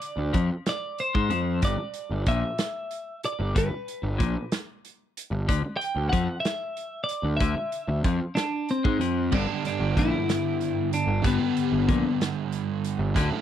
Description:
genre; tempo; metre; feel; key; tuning
indie rock; 62 BPM (dotted quarters); 6/8; straight; G major; A4 = 442 Hz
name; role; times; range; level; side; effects
twelve-string electric guitar; melody; 0.0-12.2 s; B3 to G5; -28 LUFS; left 2 dB; slapback echo
loose indie drum kit; drums; 0.0-13.3 s; crash cymbal, hi-hat, kick drum, snare drum; -28 LUFS; right 1 dB; none
crunchy overdriven guitar; riff; 0.2-13.3 s; G2 to Ab3; -32 LUFS; left 9 dB; spring reverb
fuzz picked electric bass; bass; 0.2-13.4 s; G1 to Ab2; -27 LUFS; equal; overdrive
thick fuzz guitar; riff; 9.3-13.4 s; G2 to A4; -28 LUFS; right 7 dB; distortion, ensemble chorus, slapback echo
room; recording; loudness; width
little or no reverb; dry, close 1970s-style studio recording; -24 LUFS; side -10 dB against mid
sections
0.0-9.3 A section; 9.3-13.4 A section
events
none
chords
0.0 N.C.; 1.6 G; 5.5 Dsus2; 9.3 G

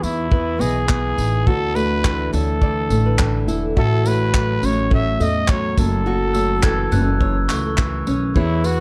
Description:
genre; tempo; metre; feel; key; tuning
acoustic pop; 104 BPM; 4/4; swing 55% on 16ths; unclear; A4 = 439 Hz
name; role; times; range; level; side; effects
growling trumpet; melody; 0.0-8.8 s; E4 to E5; -26 LUFS; equal; plate reverb
nylon-string guitar; accompaniment; 0.0-8.8 s; F#2 to G#4; -25 LUFS; equal; plate reverb
upright bass; bass; 0.0-8.8 s; E1 to E2; -24 LUFS; equal; none
cloth-damped thuddy drum kit; drums; 0.0-8.8 s; handclaps, kick drum, tambourine; -22 LUFS; equal; none
flamenco guitar; arpeggios; 0.3-8.8 s; A4 to E5; -34 LUFS; equal; plate reverb
glockenspiel with rubber mallets; second line; 6.3-8.2 s; C#6 to G#6; -32 LUFS; equal; none
room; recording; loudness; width
light reverb; dark, warm production; -19 LUFS; mono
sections
0.0-8.8 A section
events
none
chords
0.0 Emaj7; 1.5 Dadd9; 3.8 A6; 5.8 F#m7

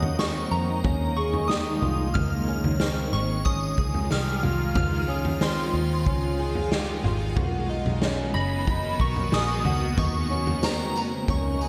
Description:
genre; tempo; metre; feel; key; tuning
dream pop; 92 BPM; 4/4; straight; Db major; A4 = 440 Hz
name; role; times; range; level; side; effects
shimmering bell with halo; melody; 0.0-11.7 s; Bb5 to F6; -34 LUFS; equal; ensemble chorus, phaser, tape echo
shimmering ambient pad; sustained chords; 0.0-11.7 s; Db3 to Gb4; -33 LUFS; equal; chorus, built-in reverb
electric guitar at the edge of break-up; arpeggios; 0.0-11.7 s; C4 to Bb4; -35 LUFS; equal; analog chorus, tape echo
vintage muted picked electric bass; bass; 0.0-11.7 s; Gb1 to F2; -30 LUFS; equal; none
raw garage drum kit; drums; 0.0-11.7 s; kick drum, snare drum, tambourine, toms; -30 LUFS; equal; tape echo
celesta; texture; 2.8-10.9 s; Db6 to Bb6; -44 LUFS; equal; none
room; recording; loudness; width
light reverb, small room reverb; echo-heavy mix; -25 LUFS; mono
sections
0.0-11.7 A section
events
none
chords
0.0 Eb7sus4; 2.2 Dbmaj7; 7.4 Cbmaj7; 10.0 Eb7sus4

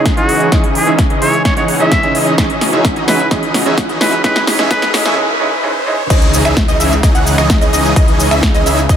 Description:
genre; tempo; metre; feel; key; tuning
EDM, festival progressive house; 129 BPM; 4/4; straight; C# minor; A4 = 442 Hz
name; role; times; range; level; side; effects
trumpet with straight mute; melody; 0.0-4.9 s; F#4 to E5; -18 LUFS; equal; dub echo
clear grand piano; accompaniment; 0.0-6.0 s; E3 to D#4; -20 LUFS; right 2 dB; sidechain pumping, dub echo
lush unison pad; sustained chords; 0.0-9.0 s; C#3 to G#4; -22 LUFS; left 1 dB; chorus, sidechain pumping
supersaw chords; riff; 0.0-9.0 s; E3 to F#5; -17 LUFS; right 1 dB; sidechain pumping, low-pass filter, dub echo
riser and impact; sound effects; 1.2-8.0 s; none; -25 LUFS; equal; none
big-room dance drum kit; drums; 0.1-9.0 s; crash cymbal, finger snaps, hi-hat, shaker, snare drum; -18 LUFS; equal; none
electronic kick drum; drums; 0.1-9.0 s; none; -14 LUFS; equal; none
wide unison pluck; arpeggios; 6.1-9.0 s; D#5 to F#5; -19 LUFS; equal; ensemble chorus, sidechain pumping, dub echo
wide detuned saw bass; bass; 6.1-9.0 s; C#2; -17 LUFS; equal; chorus, sidechain pumping
room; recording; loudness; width
moderate huge ambient reverb, RT60 4.0 s; high-pass filter; -10 LUFS; side -9 dB against mid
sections
0.0-6.1 A section; 6.1-9.0 B section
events
build-up 0.0-6.1; drum fill 0.0-5.2; filter sweep on supersaw synth 0.0-6.1; filter sweep on analog synth pad 0.0-6.1; break 5.2-6.1; drop 6.1-9.0; impact 6.1-8.0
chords
0.0 C#madd9

